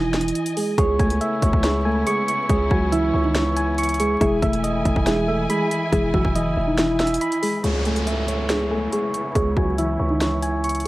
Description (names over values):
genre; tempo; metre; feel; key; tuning
hip hop, trap; 140 BPM; 4/4; half-time; C# minor; A4 = 440 Hz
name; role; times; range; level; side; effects
muted felt-like synth keys; melody; 0.0-10.9 s; D#3 to A4; -23 LUFS; right 1 dB; chorus, low-pass filter
dark symphonic string section; sustained chords; 0.0-10.9 s; C#3 to G#5; -30 LUFS; left 1 dB; low-pass filter
growling 808-style bass; bass; 0.0-10.9 s; E1 to C#2; -25 LUFS; equal; none
trap drum kit; drums; 0.1-10.9 s; hi-hat, kick drum, snare drum; -24 LUFS; equal; overdrive
soft electric-piano-like synth keys; accompaniment; 0.8-10.9 s; E4 to C#6; -25 LUFS; equal; chorus, low-pass filter
downlifter; sound effects; 7.6-10.9 s; none; -31 LUFS; equal; none
room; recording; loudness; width
little or no reverb; dry, gritty hardware recording, vinyl crackle; -18 LUFS; side -18 dB against mid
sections
0.0-7.6 A section; 7.6-10.9 B section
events
filter sweep 7.6-10.9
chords
0.0 Emaj7; 0.8 C#m7; 4.2 Emaj7; 7.6 C#m7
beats
0.35 | 0.78 1.21 1.64 2.07 | 2.50 2.92 3.35 3.78 | 4.21 4.64 5.07 5.50 | 5.92 6.35 6.78 7.21 | 7.64 8.07 8.50 8.93 | 9.35 9.78 10.21 10.64